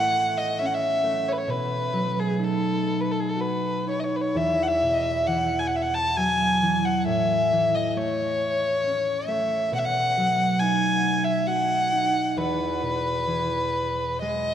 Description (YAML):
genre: celtic folk, Celtic slow air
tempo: 60-70 BPM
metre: 3/4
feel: rubato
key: E major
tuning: A4 = 442 Hz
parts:
  - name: dark violin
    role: melody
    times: 0.0-14.5 s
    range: G#4 to A5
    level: -23 LUFS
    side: left 1 dB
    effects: none
  - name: concert harp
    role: accompaniment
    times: 0.0-14.5 s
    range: E2 to F#4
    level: -27 LUFS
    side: right 2 dB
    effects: none
room: wet cathedral reverb, RT60 4.2 s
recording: none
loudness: -22 LUFS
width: side -9 dB against mid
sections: 0.0-14.5 A section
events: none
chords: 0.0 A; 1.5 B; 4.3 Esus2; 7.1 A; 9.7 B; 12.4 E